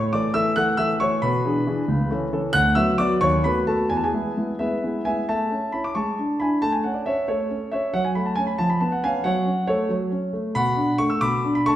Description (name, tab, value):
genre	classical-period piano sonatina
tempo	91 BPM (dotted quarters)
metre	6/8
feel	straight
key	A major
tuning	A4 = 440 Hz
part	warm concert grand piano	solo	0.0-11.8 s	C#2 to F#6	-20 LUFS	equal	none
room	wet recital hall reverb, RT60 1.4 s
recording	heard from further back in the room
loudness	-20 LUFS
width	side -12 dB against mid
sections	0.0-5.3 A section; 5.3-11.8 B section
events	none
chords	0.0 A; 1.2 E7/B; 1.9 A/C#; 2.5 Bm/D; 3.2 B7/D#; 3.9 E; 5.3 A; 6.0 E7/G#; 6.6 A; 7.9 F#m; 8.6 C#7/E#; 9.2 F#m; 10.6 Bm7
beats	0.57 | 1.23 1.88 | 2.54 3.21 | 3.90 4.60 | 5.29 5.96 | 6.62 7.28 | 7.94 8.60 | 9.25 9.90 | 10.56 11.22